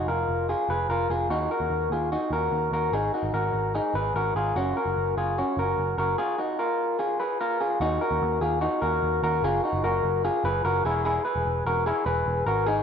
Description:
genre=jangly indie pop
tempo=148 BPM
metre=4/4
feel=straight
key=Eb minor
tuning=A4 = 440 Hz
part: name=electric guitar through a small old amp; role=arpeggios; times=0.0-12.8 s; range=Db4 to Cb5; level=-24 LUFS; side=left 1 dB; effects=none
part: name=vintage muted picked electric bass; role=bass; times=0.0-12.8 s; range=E1 to Eb2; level=-30 LUFS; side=right 1 dB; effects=none
room=wet plate reverb, RT60 2.4 s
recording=rough home demo mix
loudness=-23 LUFS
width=side -7 dB against mid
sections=0.0-7.8 A section; 7.8-12.8 B section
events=none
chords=0.0 Bb5/F; 1.3 Ebm; 2.9 Abm7; 4.6 Gbsus2; 6.2 Bb5; 7.8 Ebm; 9.4 Gbmaj7; 10.8 E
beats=0.08 0.49 0.89 | 1.30 1.71 2.12 2.52 | 2.93 3.34 3.74 4.15 | 4.56 4.96 5.37 5.78 | 6.18 6.59 7.00 7.40 | 7.81 8.21 8.62 9.02 | 9.43 9.84 10.24 10.64 | 11.05 11.46 11.86 12.27 | 12.67

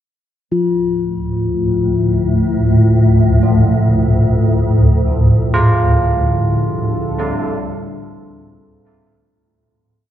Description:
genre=dark ambient drone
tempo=free time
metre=none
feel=none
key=D minor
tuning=A4 = 440 Hz
part: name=swarming drone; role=drone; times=1.2-9.4 s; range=D2 to A2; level=-13 LUFS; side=equal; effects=built-in reverb
part: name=bronze singing bowl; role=texture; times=0.5-9.3 s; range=F3 to F4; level=-21 LUFS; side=left 5 dB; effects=none
part: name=carillon bells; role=arpeggios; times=3.4-10.1 s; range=A2 to F4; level=-21 LUFS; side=right 3 dB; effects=analog delay
part: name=deep dark ambient pad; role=sustained chords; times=6.2-9.3 s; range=D3 to A4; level=-25 LUFS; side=left 1 dB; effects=chorus, built-in reverb
room=light reverb, small room ambience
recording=echo-heavy mix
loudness=-12 LUFS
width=side -11 dB against mid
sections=0.5-9.3 A section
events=fade-in on church bells 0.5-9.3; fade-out 4.9-9.3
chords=0.5 Dm; 4.9 G5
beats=free time

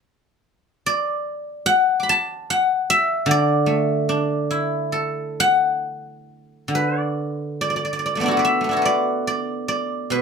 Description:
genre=chinese traditional, Chinese solo plucked strings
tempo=71 BPM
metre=4/4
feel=uneven beats, rubato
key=D gong mode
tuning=A4 = 440 Hz
part: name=guzheng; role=solo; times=0.9-10.2 s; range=B2 to D6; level=-19 LUFS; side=equal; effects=none
room=moderate studio reverb, RT60 0.6 s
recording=none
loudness=-19 LUFS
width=side -5 dB against mid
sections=0.0-6.7 A section; 6.7-10.2 B section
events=none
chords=none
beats=| 0.02 0.84 1.66 2.46 | 3.27 4.09 4.93 5.82 | 6.71 7.58 8.44 9.28 | 10.11

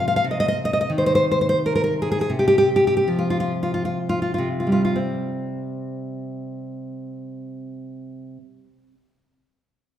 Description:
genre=romantic piece for solo classical guitar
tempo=58-92 BPM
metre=3/4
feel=rubato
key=C minor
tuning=A4 = 440 Hz
part: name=nylon-string guitar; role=solo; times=0.0-8.9 s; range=C3 to F5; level=-20 LUFS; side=equal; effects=none
room=moderate recital hall reverb, RT60 1.7 s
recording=recorded in a church or concert hall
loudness=-19 LUFS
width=side -10 dB against mid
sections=0.0-5.0 A section; 5.0-10.0 B section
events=slowing down 0.0-5.0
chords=0.2 Cm; 2.3 Csus4; 5.0 C5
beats=| 0.24 0.91 1.59 | 2.31 3.09 3.98 | 4.96 5.88 6.80 | 7.74 8.67

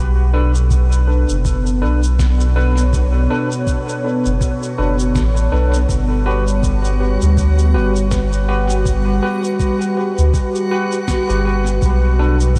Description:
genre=ambient dub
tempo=81 BPM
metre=4/4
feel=swing 57% on 16ths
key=B minor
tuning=A4 = 445 Hz
part: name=airy breathy pad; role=sustained chords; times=0.5-12.6 s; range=B2 to C#5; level=-24 LUFS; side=equal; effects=chorus
part: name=soft dub sub bass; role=bass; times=0.0-12.6 s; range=F#1 to D2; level=-17 LUFS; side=equal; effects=none
part: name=backwards swelling texture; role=texture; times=2.3-12.6 s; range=F#4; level=-34 LUFS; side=equal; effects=built-in reverb, lush chorus
part: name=barky tine electric piano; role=stabs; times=0.3-12.4 s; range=D4 to B4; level=-25 LUFS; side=equal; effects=lush chorus, dub echo
part: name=electronic cabasa and snare drum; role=drums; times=0.6-12.6 s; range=none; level=-33 LUFS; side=equal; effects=small room ambience, dub echo
part: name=electronic kick drum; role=drums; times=0.7-12.6 s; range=none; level=-22 LUFS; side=equal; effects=small room ambience
room=moderate huge ambient reverb, RT60 6.3 s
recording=dreamy mix soaked in reverb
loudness=-16 LUFS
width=mono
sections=0.0-12.6 A section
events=none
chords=0.0 Bm7; 5.9 Gmaj7; 11.8 Bm7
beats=0.71 1.45 2.19 | 2.93 3.67 4.41 5.16 | 5.90 6.64 7.38 8.12 | 8.86 9.60 10.34 11.08 | 11.82 12.56

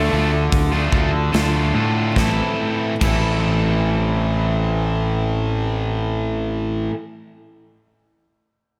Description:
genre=classic rock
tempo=71-77 BPM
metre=4/4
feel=straight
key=A minor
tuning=A4 = 440 Hz
part: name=raspy tenor saxophone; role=melody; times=0.0-0.5 s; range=A3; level=-28 LUFS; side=equal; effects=digital delay
part: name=picked acoustic archtop guitar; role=accompaniment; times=0.0-7.1 s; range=A2 to A4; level=-35 LUFS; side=equal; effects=none
part: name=crunchy overdriven guitar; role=riff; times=0.0-7.0 s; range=A2 to A4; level=-25 LUFS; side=equal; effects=none
part: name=tight distorted guitar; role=riff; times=0.0-6.9 s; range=A2 to D4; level=-28 LUFS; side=equal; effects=distortion
part: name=fuzz fingered electric bass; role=bass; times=0.0-6.9 s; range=A1 to A2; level=-24 LUFS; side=equal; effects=overdrive
part: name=big rock drum kit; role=drums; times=0.5-3.3 s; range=crash cymbal, hi-hat, kick drum, snare drum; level=-26 LUFS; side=equal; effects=none
room=light reverb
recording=none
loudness=-20 LUFS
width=mono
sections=0.0-2.2 A section; 2.2-5.6 B section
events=slowing down 0.0-2.2; tenor saxophone solo 0.0-2.2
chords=0.0 Dm; 2.2 Am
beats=0.52 1.33 | 2.17 3.02 3.87 4.71

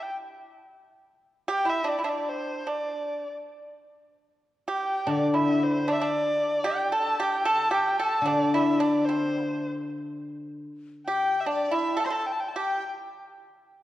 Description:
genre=chinese traditional, Chinese chamber ensemble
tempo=76 BPM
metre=2/4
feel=rubato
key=D shang mode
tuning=A4 = 440 Hz
part: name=warm erhu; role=melody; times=0.0-12.9 s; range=C5 to C6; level=-28 LUFS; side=equal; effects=none
part: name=pipa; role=second line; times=1.5-12.8 s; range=C4 to C5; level=-29 LUFS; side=right 3 dB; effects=none
part: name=steel-string zither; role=accompaniment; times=5.1-10.6 s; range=D3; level=-26 LUFS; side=left 2 dB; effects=none
part: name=mellow hollow dizi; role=second line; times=11.1-12.8 s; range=D5 to A5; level=-32 LUFS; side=left 5 dB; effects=none
room=wet concert hall reverb, RT60 2.2 s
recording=worn, warbling old tape, cassette tape, warbly pitch drift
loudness=-24 LUFS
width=side -14 dB against mid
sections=0.0-3.5 A section; 3.5-13.8 B section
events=none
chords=none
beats=| 0.30 1.09 | 1.88 2.69 | 3.50 4.30 | 5.09 5.88 | 6.67 7.46 | 8.26 9.06 | 9.87 10.67 | 11.47 12.26

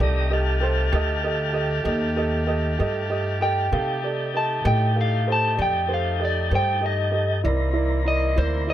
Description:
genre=slow blues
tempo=64 BPM (dotted quarters)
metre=12/8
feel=straight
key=F mixolydian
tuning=A4 = 441 Hz
part: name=dark upright piano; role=accompaniment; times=0.0-8.7 s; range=E4 to F5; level=-27 LUFS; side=right 4 dB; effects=none
part: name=mellow horn section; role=sustained chords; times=0.0-8.7 s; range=A3 to G4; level=-35 LUFS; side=left 3 dB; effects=none
part: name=tonewheel organ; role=sustained chords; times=0.0-8.7 s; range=E3 to Bb5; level=-30 LUFS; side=left 1 dB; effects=slow rotary speaker
part: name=upright bass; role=bass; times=0.0-8.7 s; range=C2 to C3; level=-24 LUFS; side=equal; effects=none
part: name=electric guitar through a small old amp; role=melody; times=3.4-8.7 s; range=C5 to A5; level=-24 LUFS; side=left 1 dB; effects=none
room=little or no reverb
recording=none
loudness=-20 LUFS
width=side -12 dB against mid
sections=0.0-8.7 A section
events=clean electric guitar solo 0.0-8.7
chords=0.0 F9; 7.5 C9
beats=| 0.00 0.93 1.86 2.79 | 3.72 4.66 5.59 6.52 | 7.45 8.38

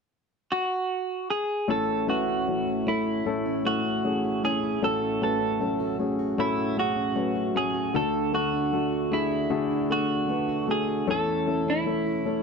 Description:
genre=pop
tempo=77 BPM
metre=4/4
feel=straight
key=A major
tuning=A4 = 440 Hz
part: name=clean electric guitar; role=melody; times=0.5-12.4 s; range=E4 to A4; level=-27 LUFS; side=right 3 dB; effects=wide subtle chorus
part: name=warm grand piano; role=accompaniment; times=1.7-12.4 s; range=A1 to C#5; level=-27 LUFS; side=left 9 dB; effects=none
part: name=fingerpicked plugged-in steel-string acoustic guitar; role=arpeggios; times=1.7-12.4 s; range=A2 to F#4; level=-30 LUFS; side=right 12 dB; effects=none
room=moderate studio reverb, RT60 0.5 s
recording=dry, close 1970s-style studio recording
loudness=-24 LUFS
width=side -5 dB against mid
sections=0.0-1.7 A section; 1.7-12.4 B section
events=none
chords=0.0 N.C.; 1.7 A; 7.9 D; 11.1 A/E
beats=0.10 0.89 | 1.68 2.47 3.26 4.04 | 4.82 5.60 6.38 7.16 | 7.94 8.72 9.50 10.29 | 11.07 11.86

